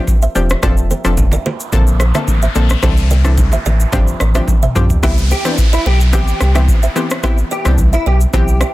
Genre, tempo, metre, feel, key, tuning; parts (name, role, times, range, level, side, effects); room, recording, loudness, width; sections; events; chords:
afrobeats; 109 BPM; 4/4; straight; C major from 5.0 s; A4 = 440 Hz
analog pluck; accompaniment; 0.0-8.5 s; D3 to A4; -20 LUFS; left 3 dB; chorus
buzzing kalimba; riff; 0.0-8.7 s; F4 to E5; -24 LUFS; right 4 dB
booming analog drum machine; drums; 0.1-8.7 s; kick drum, rim click, shaker, toms; -15 LUFS; equal; overdrive
bongos and congas; percussion; 0.1-4.9 s; -24 LUFS; right 2 dB
warm sub bass; bass; 0.4-8.6 s; E1 to C2; -13 LUFS; equal
noise sweep and downlifter; sound effects; 1.2-8.7 s; -26 LUFS; equal
direct-recorded clean electric guitar; melody; 5.0-8.7 s; D4 to G4; -21 LUFS; equal; ensemble chorus, tape echo
digital ambience; dense, heavily limited modern master; -11 LUFS; side -17 dB against mid
0.0-5.0 A section; 5.0-8.7 B section
noise sweep 1.2-5.0; drum fill 4.5-5.0
0.0 G7sus4; 0.6 F6; 1.7 Bbmaj9; 2.8 C69; 3.9 G7sus4; 5.0 Cmaj7